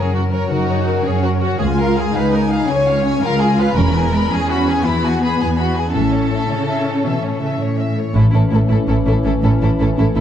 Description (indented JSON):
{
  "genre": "cinematic, heroic adventure film score",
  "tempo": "110 BPM (dotted quarters)",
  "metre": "12/8",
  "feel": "straight",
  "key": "unclear",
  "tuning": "A4 = 442 Hz",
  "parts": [
    { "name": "warm studio violin section", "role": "melody", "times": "0.0-10.2 s", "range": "A4 to B5", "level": "-25 LUFS", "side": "left 4 dB", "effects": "none" },
    { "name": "warm symphonic violin section", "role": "second line", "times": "0.0-10.2 s", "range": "E4 to C#5", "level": "-22 LUFS", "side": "left 1 dB", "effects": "none" },
    { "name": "concert harp", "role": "arpeggios", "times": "0.0-10.2 s", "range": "F#2 to G#5", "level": "-22 LUFS", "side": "left 7 dB", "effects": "none" },
    { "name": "warm chamber cello section", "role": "bass", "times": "0.0-10.2 s", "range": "C#2 to C#3", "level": "-20 LUFS", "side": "right 2 dB", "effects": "none" },
    { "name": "warm symphonic viola section", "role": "accompaniment", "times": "0.5-10.2 s", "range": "G#3 to E#4", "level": "-22 LUFS", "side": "right 1 dB", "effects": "none" },
    { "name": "rich symphonic double bass section", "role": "bass", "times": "1.6-10.2 s", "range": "E1 to C#2", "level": "-18 LUFS", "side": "right 3 dB", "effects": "none" },
    { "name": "warm French horn section", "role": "sustained chords", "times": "8.2-10.2 s", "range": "E3 to C#4", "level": "-22 LUFS", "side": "left 3 dB", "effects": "none" }
  ],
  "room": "wet scoring stage reverb, RT60 1.6 s",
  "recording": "dark, warm production",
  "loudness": "-14 LUFS",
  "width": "side -9 dB against mid",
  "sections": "0.0-8.2 A section; 8.2-10.2 B section",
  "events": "none",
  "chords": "0.0 F#; 1.6 C#; 3.8 E; 5.9 A"
}